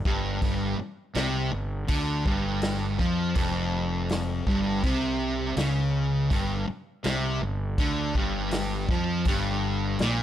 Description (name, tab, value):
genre	blues rock power trio and southern rock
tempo	82 BPM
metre	4/4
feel	straight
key	G minor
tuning	A4 = 440 Hz
part	fuzz fingered electric bass	bass	0.0-10.2 s	F1 to F2	-31 LUFS	equal	overdrive
part	fuzz guitar	riff	0.1-10.2 s	F2 to F3	-27 LUFS	equal	distortion
part	vintage drum kit	drums	0.1-10.2 s	hi-hat, kick drum, snare drum	-28 LUFS	equal	none
room	light reverb, small room ambience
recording	none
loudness	-24 LUFS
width	side -11 dB against mid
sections	0.0-10.2 A section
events	none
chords	0.0 G5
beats	| 0.42 1.16 1.90 2.64 | 3.37 4.11 4.85 5.58 | 6.32 7.06 7.79 8.53 | 9.26 10.00